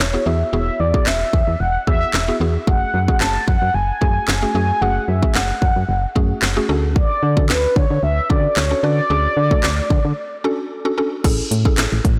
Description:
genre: dance-pop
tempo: 112 BPM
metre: 4/4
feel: straight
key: unclear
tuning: A4 = 440 Hz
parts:
  - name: mellow horn-like synth lead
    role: melody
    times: 0.0-10.7 s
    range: B4 to A5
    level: -23 LUFS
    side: equal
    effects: chorus, delay
  - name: mallet-like synth pluck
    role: accompaniment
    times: 0.0-12.2 s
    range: A3 to B4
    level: -27 LUFS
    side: equal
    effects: chorus
  - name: solid FM bass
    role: bass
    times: 0.0-12.2 s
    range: E1 to D3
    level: -22 LUFS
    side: equal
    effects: sidechain pumping
  - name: house drum kit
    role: drums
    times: 0.0-12.2 s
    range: crash cymbal, handclaps, hi-hat, kick drum, snare drum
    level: -21 LUFS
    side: equal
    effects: none
room: light reverb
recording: blown-out, overdriven recording, overdrive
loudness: -18 LUFS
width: mono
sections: 0.0-11.2 A section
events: break 10.2-11.2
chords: 0.0 Eadd9; 2.7 F#madd9; 6.7 Dmaj7; 11.2 Amaj7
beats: | 0.53 1.07 1.60 2.14 | 2.67 3.21 3.75 4.28 | 4.82 5.35 5.89 6.42 | 6.96 7.50 8.03 8.57 | 9.10 9.64 10.17 10.71 | 11.24 11.78

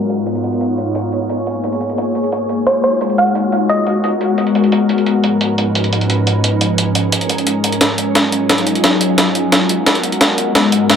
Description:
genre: liquid drum and bass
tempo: 175 BPM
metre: 4/4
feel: straight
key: Eb minor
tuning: A4 = 440 Hz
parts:
  - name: glassy FM pad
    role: sustained chords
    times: 0.0-11.0 s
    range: Ab2 to Db5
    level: -15 LUFS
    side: left 1 dB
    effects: ensemble chorus, built-in reverb
  - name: breakbeat sampler-style drum kit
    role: drums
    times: 0.1-11.0 s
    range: hi-hat, snare drum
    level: -16 LUFS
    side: right 1 dB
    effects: high-pass filter on hats, high-pass filter on snare, high-pass filter on cymbals, high-pass filter on room, tape echo
  - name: hollow square pluck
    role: melody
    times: 2.7-4.0 s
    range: Db5 to Gb5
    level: -16 LUFS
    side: right 1 dB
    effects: chorus, tape echo
room: wet spring reverb, RT60 1.6 s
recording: echo-heavy mix, low-pass filter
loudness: -13 LUFS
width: side -7 dB against mid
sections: 0.0-7.8 A section; 7.8-11.0 B section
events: filter sweep 0.0-7.8; build-up 7.8-11.0; drum fill 7.8-11.0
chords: 0.0 Db9/Ab; 1.0 Bbm7; 2.3 Ebm11; 3.7 Abm9; 5.1 Db9/Ab; 6.4 Bbm7; 7.8 Ebm11; 9.2 Abm9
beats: 0.27 0.61 | 0.95 1.29 1.64 1.98 | 2.32 2.67 3.01 3.35 | 3.69 4.04 4.38 4.72 | 5.07 5.41 5.75 6.09 | 6.44 6.78 7.12 7.47 | 7.81 8.15 8.49 8.84 | 9.18 9.52 9.87 10.21 | 10.55 10.89

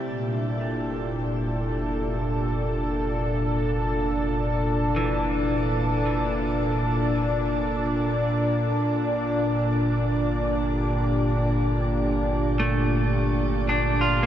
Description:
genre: ambient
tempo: 55 BPM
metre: 4/4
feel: straight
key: unclear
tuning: A4 = 440 Hz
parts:
  - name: warm analog pad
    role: sustained chords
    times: 0.0-14.3 s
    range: Bb2 to A4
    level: -23 LUFS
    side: equal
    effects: wide subtle chorus
  - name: electric guitar at the edge of break-up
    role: arpeggios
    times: 0.0-14.3 s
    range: E3 to F4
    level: -31 LUFS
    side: right 2 dB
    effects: tape echo
  - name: warm sub bass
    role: bass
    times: 0.0-14.3 s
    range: F1 to G1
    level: -31 LUFS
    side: equal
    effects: none
room: wet shimmer reverb, RT60 7.7 s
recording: none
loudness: -22 LUFS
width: side -10 dB against mid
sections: 0.0-14.3 A section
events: none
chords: 0.1 Bbmaj7/F; 8.8 Gmadd9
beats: | 0.05 1.14 2.23 3.32 | 4.41 5.50 6.60 7.69 | 8.78 9.87 10.96 12.05 | 13.14 14.23

